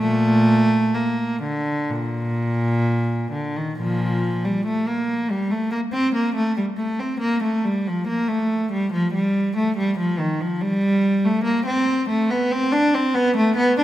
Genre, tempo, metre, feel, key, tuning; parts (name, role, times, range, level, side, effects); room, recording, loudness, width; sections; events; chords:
classical, baroque-style suite movement for unaccompanied cello; 61-73 BPM; 4/4; rubato; Bb major; A4 = 441 Hz
rich cello; solo; 0.0-13.8 s; Bb2 to D4; -19 LUFS; equal
wet concert hall reverb, RT60 2.0 s; -19 LUFS; side -13 dB against mid
0.0-3.8 A section; 3.8-13.8 B section